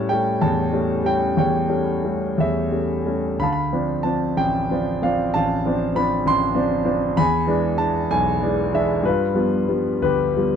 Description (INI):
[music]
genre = classical, lyrical solo piano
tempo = 58-68 BPM (dotted quarters)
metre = 6/8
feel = rubato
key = unclear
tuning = A4 = 440 Hz
[part]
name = clear concert grand piano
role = solo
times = 0.0-10.6 s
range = A1 to C6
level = -18 LUFS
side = equal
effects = none
[sound]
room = light reverb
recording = dark, warm production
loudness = -18 LUFS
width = side -7 dB against mid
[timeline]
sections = 0.0-10.6 A section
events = none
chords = 0.0 A7; 3.4 Dm7; 7.2 E7; 9.1 G7